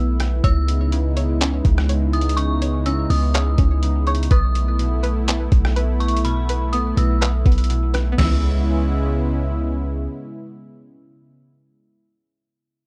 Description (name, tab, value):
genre	hip hop, atmospheric cloud-rap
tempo	124 BPM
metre	4/4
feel	half-time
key	C# minor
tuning	A4 = 439 Hz
part	dark detuned synth bell	melody	0.0-9.6 s	B5 to E6	-31 LUFS	equal	chorus, phaser, low-pass filter, delay
part	warm analog pad	sustained chords	0.0-11.3 s	C#3 to E4	-28 LUFS	equal	chorus, sidechain pumping
part	warm 808-style bass	bass	0.0-10.1 s	B1 to C#2	-22 LUFS	equal	none
part	trip hop sampler-style drum kit	drums	0.2-8.3 s	crash cymbal, handclaps, hi-hat, kick drum, rim click, snare drum, toms	-24 LUFS	equal	none
part	string-like resonator pluck	arpeggios	0.4-11.4 s	B2 to C#5	-32 LUFS	equal	chorus, low-pass filter, delay
room	little or no reverb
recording	dark, warm production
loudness	-19 LUFS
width	mono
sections	0.0-8.2 A section; 8.2-12.1 B section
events	none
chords	0.4 C#m7; 4.3 B7sus4; 8.2 C#m7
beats	| 0.44 0.92 1.41 1.89 | 2.38 2.86 3.34 3.83 | 4.31 4.79 5.28 5.76 | 6.25 6.73 7.21 7.70 | 8.18 8.66 9.15 9.63 | 10.12 10.60 11.09